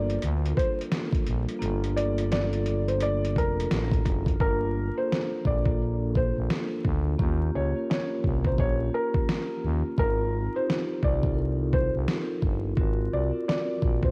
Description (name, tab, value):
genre	lo-fi hip hop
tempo	86 BPM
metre	4/4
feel	swing 61% on 16ths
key	unclear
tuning	A4 = 440 Hz
part	felt-muted upright piano	melody	0.0-14.1 s	Bb4 to D5	-33 LUFS	equal	low-pass filter, cassette tape
part	vibraphone with soft mallets	accompaniment	0.0-14.1 s	Bb3 to C5	-34 LUFS	equal	cassette tape, low-pass filter
part	string machine, violas	sustained chords	0.0-4.4 s	D3 to F4	-46 LUFS	equal	none
part	growling FM bass	bass	0.0-14.1 s	F1 to Eb2	-30 LUFS	equal	none
part	dusty soul sampler-style drum kit	drums	0.1-14.1 s	hi-hat, kick drum, snare drum	-30 LUFS	equal	overdrive, cassette tape
room	light reverb, digital ambience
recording	home recording on cassette, vinyl crackle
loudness	-27 LUFS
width	mono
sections	0.0-4.4 A section; 4.4-14.1 B section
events	hi-hats muted 4.4-14.1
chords	0.0 Gm7; 7.2 Eb7; 10.0 Ab69; 12.8 Ab13